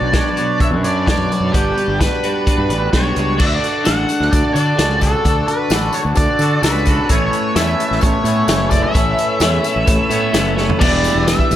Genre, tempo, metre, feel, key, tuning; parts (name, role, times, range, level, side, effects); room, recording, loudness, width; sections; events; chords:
psychedelic rock; 129 BPM; 4/4; straight; A4 = 441 Hz
octave-fuzz lead guitar; melody; 0.0-11.6 s; G4 to F#5; -20 LUFS; equal; distortion, tape echo
hand-pumped harmonium; sustained chords; 0.0-11.6 s; G3 to F#5; -26 LUFS; right 6 dB
twelve-string electric guitar; riff; 0.0-11.6 s; E2 to C#5; -20 LUFS; left 1 dB; phaser
fuzz fingered electric bass; bass; 0.0-11.6 s; E1 to D3; -20 LUFS; equal; overdrive
vintage drum kit; drums; 0.1-11.6 s; crash cymbal, hi-hat, kick drum, snare drum, toms; -18 LUFS; equal
tambourine; percussion; 3.4-11.6 s; -33 LUFS; left 13 dB
little or no reverb; -13 LUFS; side -12 dB against mid
0.0-3.4 A section; 3.4-10.8 B section
drum fill 10.6
0.0 Bmadd9; 1.5 Gmaj7; 3.4 D; 7.1 Aadd9; 10.8 Em7